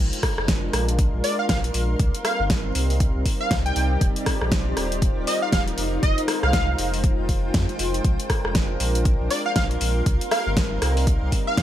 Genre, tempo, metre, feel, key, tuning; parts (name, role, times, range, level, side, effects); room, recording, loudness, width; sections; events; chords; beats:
deep house; 119 BPM; 4/4; swing 60% on 16ths; A4 = 445 Hz
warm analog pad; sustained chords; 0.0-11.6 s; G3 to C5; -30 LUFS; equal; chorus, sidechain pumping
warm sub bass; bass; 0.0-11.6 s; Eb1 to F2; -25 LUFS; equal; sidechain pumping
granular cloud pad; texture; 0.0-11.6 s; C4 to C6; -32 LUFS; equal; built-in reverb, sidechain pumping
deep house drum kit; drums; 0.1-11.6 s; hi-hat, rim click, snare drum; -26 LUFS; equal
electronic kick drum; drums; 0.2-11.6 s; -22 LUFS; equal
plucky unison lead; melody; 1.2-11.6 s; D5 to G5; -27 LUFS; equal; analog chorus, dub echo
light reverb; vinyl crackle; -20 LUFS; side -12 dB against mid
0.0-11.6 A section
0.0 Bb7; 2.0 Cm7; 4.0 Eb69; 5.8 Fm7; 8.0 Bb7; 10.1 Cm7
0.48 0.99 1.49 | 2.00 2.50 3.00 3.51 | 4.01 4.52 5.02 5.53 | 6.03 6.53 7.04 7.54 | 8.05 8.55 9.05 9.56 | 10.06 10.57 11.07 11.57